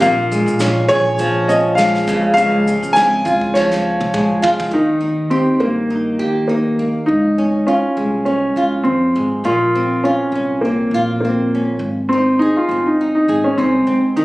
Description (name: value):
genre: acoustic pop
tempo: 102 BPM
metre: 4/4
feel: swing 55% on 16ths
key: Eb mixolydian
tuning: A4 = 439 Hz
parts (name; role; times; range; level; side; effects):
- warm upright piano; melody; 0.0-14.2 s; Bb3 to Ab5; -15 LUFS; equal; plate reverb
- flamenco guitar; accompaniment; 0.0-14.2 s; Bb2 to Ab4; -19 LUFS; equal; none
- upright bass; bass; 0.0-14.2 s; G1 to G2; -23 LUFS; equal; none
- soft brush drum kit; drums; 0.0-4.7 s; kick drum, shaker, snare drum, toms; -26 LUFS; equal; none
room: moderate studio reverb, RT60 0.7 s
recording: recorded on a phone in the room, studio reverb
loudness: -14 LUFS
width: side -19 dB against mid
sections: 0.0-4.7 A section; 4.7-14.2 B section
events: drum fill 3.5-4.7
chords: 0.0 Bbm7; 2.1 Dbmaj7; 4.7 Eb; 7.1 Db; 9.4 Bbmadd9; 11.8 Ab